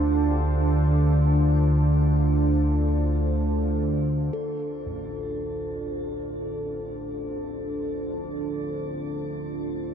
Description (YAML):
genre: dark ambient drone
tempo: free time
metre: none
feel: none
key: D minor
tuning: A4 = 440 Hz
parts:
  - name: deep dark ambient pad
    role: sustained chords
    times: 0.0-9.9 s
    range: D4 to C5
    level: -31 LUFS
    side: right 1 dB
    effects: chorus, built-in reverb, shimmer reverb
  - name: analog drone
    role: drone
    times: 0.0-9.9 s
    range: D2 to D3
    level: -24 LUFS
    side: equal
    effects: chorus
  - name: bronze singing bowl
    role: texture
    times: 0.0-9.9 s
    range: D4 to A4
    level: -34 LUFS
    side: left 2 dB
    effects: stereo widening, shimmer reverb
  - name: dark concert grand piano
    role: arpeggios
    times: 0.3-9.9 s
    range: A1 to G4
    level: -44 LUFS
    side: left 1 dB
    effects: diffuse ambient delay, shimmer reverb
room: moderate huge ambient reverb, RT60 8.2 s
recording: dark, warm production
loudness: -23 LUFS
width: side -8 dB against mid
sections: 0.0-4.4 A section; 4.4-9.9 B section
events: none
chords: 0.0 F; 4.4 Dm